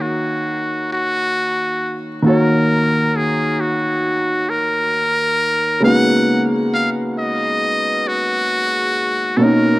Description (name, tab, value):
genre	hip hop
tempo	67 BPM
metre	4/4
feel	swing 60% on 16ths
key	unclear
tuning	A4 = 440 Hz
part	trumpet with metal mute	melody	0.0-9.8 s	Gb4 to Gb5	-18 LUFS	equal	tape echo
part	dark upright piano	accompaniment	0.0-9.8 s	B2 to Db5	-18 LUFS	equal	cassette tape
room	light reverb, studio reverb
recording	vinyl crackle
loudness	-15 LUFS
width	side -18 dB against mid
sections	0.0-9.8 A section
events	none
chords	0.0 Ebm7; 5.8 Db13sus4